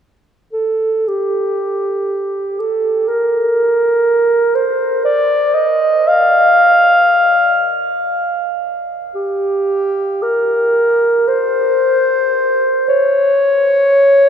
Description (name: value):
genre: classical, free, expressive piece for unaccompanied clarinet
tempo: free time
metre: none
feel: none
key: C dorian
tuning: A4 = 440 Hz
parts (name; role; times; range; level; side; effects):
- mellow clarinet; solo; 0.5-14.3 s; G4 to F5; -12 LUFS; equal; none
room: wet cathedral reverb, RT60 6.9 s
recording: recorded in a church or concert hall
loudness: -12 LUFS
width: side -8 dB against mid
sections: 0.6-9.2 A section; 9.2-14.3 B section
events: none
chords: none